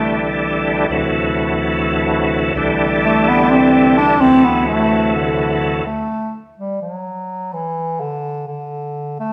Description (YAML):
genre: progressive instrumental, progressive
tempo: free time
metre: none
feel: none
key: unclear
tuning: A4 = 438 Hz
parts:
  - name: warm bass clarinet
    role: melody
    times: 0.0-0.2, 3.0-9.3 s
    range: D3 to D4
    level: -18 LUFS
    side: equal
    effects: none
  - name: bright tonewheel organ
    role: accompaniment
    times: 0.0-5.8 s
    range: C2 to A3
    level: -18 LUFS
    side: equal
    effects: chorus vibrato, slow rotary speaker
room: wet large studio reverb, RT60 1.3 s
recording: band playing live in one room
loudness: -16 LUFS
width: mono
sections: 0.0-5.9 A section; 5.9-9.3 B section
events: bass clarinet solo 0.0-5.9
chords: 0.0 C69; 0.9 D7; 2.6 C69; 4.2 D7; 5.9 N.C.